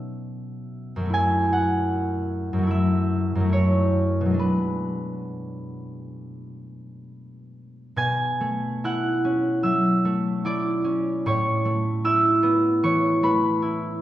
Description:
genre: classical, solo harp piece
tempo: 61-78 BPM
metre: 4/4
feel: rubato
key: B dorian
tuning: A4 = 441 Hz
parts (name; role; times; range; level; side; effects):
- concert harp; solo; 0.0-14.0 s; F#2 to G#6; -21 LUFS; equal; none
room: wet recital hall reverb, RT60 1.6 s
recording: heard from further back in the room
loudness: -20 LUFS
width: side -13 dB against mid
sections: 0.0-8.0 A section; 8.0-14.0 A section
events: none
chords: 0.0 C#m11/B; 1.1 F#m7; 4.4 Bm6; 8.0 Bm11; 11.2 Aadd9

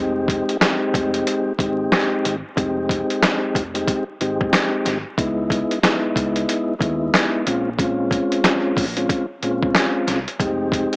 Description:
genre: hip hop, boom-bap hip-hop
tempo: 92 BPM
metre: 4/4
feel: swing 60% on 16ths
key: F minor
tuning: A4 = 441 Hz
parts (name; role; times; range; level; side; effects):
- mellow tonewheel organ; accompaniment; 0.0-11.0 s; Ab3 to G4; -20 LUFS; left 1 dB; fast rotary speaker, high-pass filter, low-pass filter, cassette tape
- deep dub fingered electric bass; bass; 0.0-10.8 s; F1 to Eb2; -30 LUFS; equal; none
- boom bap sampler-style drum kit; drums; 0.3-11.0 s; hi-hat, kick drum, snare drum; -20 LUFS; equal; cassette tape
room: light reverb, digital ambience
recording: home recording on cassette, vinyl crackle, small speaker sound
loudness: -18 LUFS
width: side -30 dB against mid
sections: 0.0-11.0 A section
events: none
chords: 0.0 Fm9; 5.2 Dbm9; 7.5 Bbm9; 10.4 Fm9

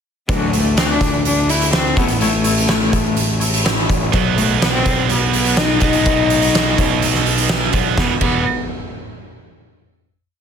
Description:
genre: quiet-loud alternative rock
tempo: 125 BPM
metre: 4/4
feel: straight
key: unclear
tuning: A4 = 439 Hz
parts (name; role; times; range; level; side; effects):
- rich cello; melody; 0.3-8.4 s; F#3 to E4; -20 LUFS; left 3 dB; slapback echo
- twangy electric guitar; arpeggios; 0.3-4.1 s; D3 to C#5; -23 LUFS; left 4 dB; tremolo
- fuzz picked electric bass; bass; 0.3-8.4 s; E1 to D2; -21 LUFS; equal; overdrive
- oversized low-tuned drum kit; drums; 0.3-8.3 s; crash cymbal, hi-hat, kick drum, snare drum; -18 LUFS; equal; none
- high-gain distorted guitar; riff; 4.1-8.4 s; E2 to B3; -19 LUFS; right 13 dB; distortion
room: light reverb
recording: dense, heavily limited modern master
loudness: -14 LUFS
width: side -7 dB against mid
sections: 0.3-8.0 pre-chorus; 8.0-9.9 final chord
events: none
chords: 0.3 Dadd9; 2.0 Aadd9; 4.1 B; 8.0 E5

